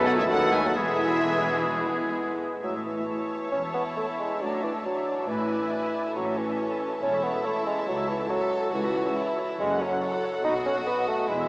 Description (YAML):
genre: quick classical-period movement for symphony orchestra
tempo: 138 BPM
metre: 4/4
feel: rubato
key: A major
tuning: A4 = 440 Hz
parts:
  - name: clear oboe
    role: second line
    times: 0.0-2.4 s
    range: G#4 to A4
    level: -31 LUFS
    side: equal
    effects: none
  - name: silver concert flute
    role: second line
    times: 0.0-2.2 s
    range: G#4 to B4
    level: -33 LUFS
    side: equal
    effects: none
  - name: warm chamber violin section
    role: second line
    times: 0.0-11.5 s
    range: G#3 to A4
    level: -32 LUFS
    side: equal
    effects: none
  - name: mellow bassoon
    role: accompaniment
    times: 0.0-11.5 s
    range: D#3 to D#4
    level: -28 LUFS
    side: equal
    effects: none
  - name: warm studio viola section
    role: accompaniment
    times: 0.0-11.5 s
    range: D#3 to F#5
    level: -33 LUFS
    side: equal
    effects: none
  - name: dark French horn section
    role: sustained chords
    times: 0.0-2.2 s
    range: E3 to G#3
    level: -34 LUFS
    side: equal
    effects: none
  - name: warm chamber cello section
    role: bass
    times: 0.0-11.5 s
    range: C#2 to B2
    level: -35 LUFS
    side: equal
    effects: none
  - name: warm chamber double bass section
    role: bass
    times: 0.0-11.5 s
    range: E1 to D#2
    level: -40 LUFS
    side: equal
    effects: none
  - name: warm symphonic violin section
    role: melody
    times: 0.1-11.5 s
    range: E5 to A5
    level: -35 LUFS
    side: equal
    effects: none
  - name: dark clarinet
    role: second line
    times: 0.1-2.2 s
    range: E4 to G#4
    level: -35 LUFS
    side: equal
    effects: none
room: wet cathedral reverb, RT60 5.8 s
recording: in a vast, echoing space, small speaker sound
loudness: -24 LUFS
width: side -25 dB against mid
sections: 0.0-2.6 A section; 2.6-11.5 B section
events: none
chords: 0.0 B7; 0.8 E; 2.6 A; 4.4 E7/A; 6.2 A; 7.9 A/C#; 9.6 F#m; 10.4 B7